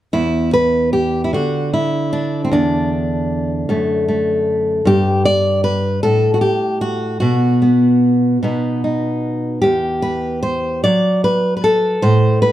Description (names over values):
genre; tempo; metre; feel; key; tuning
folk, solo fingerstyle acoustic guitar; 50 BPM (dotted quarters); 6/8; rubato; unclear; A4 = 437 Hz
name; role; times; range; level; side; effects
fingerpicked steel-string acoustic guitar; solo; 0.1-12.5 s; E2 to D5; -14 LUFS; equal; none
room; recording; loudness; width
light reverb; dark, warm production; -14 LUFS; side -13 dB against mid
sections
0.1-12.5 A section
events
none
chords
0.1 N.C.; 2.5 Dsus2/E; 3.7 D/F#; 4.9 N.C.; 8.4 B; 9.6 N.C.